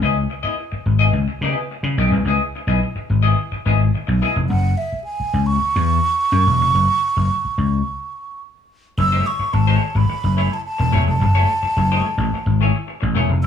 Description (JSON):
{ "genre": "funk", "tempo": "107 BPM", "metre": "4/4", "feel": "straight", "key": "unclear", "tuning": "A4 = 442 Hz", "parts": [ { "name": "semi-hollow electric guitar", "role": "accompaniment", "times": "0.0-4.4, 9.0-13.5 s", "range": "A3 to D#5", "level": "-23 LUFS", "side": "left 4 dB", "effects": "lush chorus" }, { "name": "vintage slap bass", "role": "bass", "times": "0.0-13.5 s", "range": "E1 to C#3", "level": "-17 LUFS", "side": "left 1 dB", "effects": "none" }, { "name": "breathy mellow concert flute", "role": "melody", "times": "4.5-13.5 s", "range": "E5 to E6", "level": "-20 LUFS", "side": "right 3 dB", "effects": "none" } ], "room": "little or no reverb", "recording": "studio ambience", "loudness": "-16 LUFS", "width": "side -8 dB against mid", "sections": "0.0-9.0 A section; 9.0-13.5 B section", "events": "stop 7.9-9.0", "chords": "0.0 C#m9; 4.5 F#5; 9.0 F#m9" }